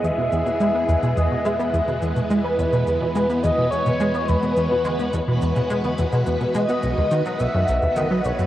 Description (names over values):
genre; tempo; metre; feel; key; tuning
ambient, sequencer-driven space music; 106 BPM; 4/4; straight; E major; A4 = 440 Hz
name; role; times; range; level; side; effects
mellow horn-like synth lead; melody; 0.0-8.5 s; B4 to E5; -24 LUFS; equal; phaser, lush chorus, tape echo
phased string machine; sustained chords; 0.0-8.5 s; D#3 to B4; -24 LUFS; equal; ensemble chorus, phaser
plucky analog bass; riff; 0.0-8.5 s; B1 to B3; -22 LUFS; equal; ensemble chorus, tape echo
warm sub bass; bass; 0.0-8.5 s; B1 to E2; -38 LUFS; equal; none
electronic shaker and toms; percussion; 0.0-8.5 s; none; -39 LUFS; equal; tape echo
bubbling stepped-filter texture; texture; 0.0-8.5 s; B3 to B4; -43 LUFS; equal; none
room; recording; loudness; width
wet huge ambient reverb, RT60 8.8 s; worn, warbling old tape, cassette tape, warbly pitch drift; -18 LUFS; side -13 dB against mid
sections
0.0-8.5 A section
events
fade-in on sub bass 0.0-8.5; fade-in on drum 0.0-8.5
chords
0.0 E; 6.8 B7